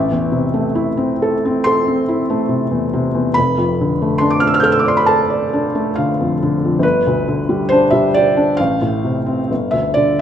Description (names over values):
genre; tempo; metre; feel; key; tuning
classical, romantic nocturne for solo piano; 60-72 BPM; 4/4; rubato; unclear; A4 = 438 Hz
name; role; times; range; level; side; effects
felt-muted upright piano; solo; 0.0-10.2 s; F1 to G6; -14 LUFS; equal; none
room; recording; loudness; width
moderate recital hall reverb, RT60 1.4 s; none; -14 LUFS; side -9 dB against mid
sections
0.0-10.2 A section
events
none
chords
0.0 Am; 3.4 Dm/F; 6.8 G; 8.6 F/A; 9.5 G5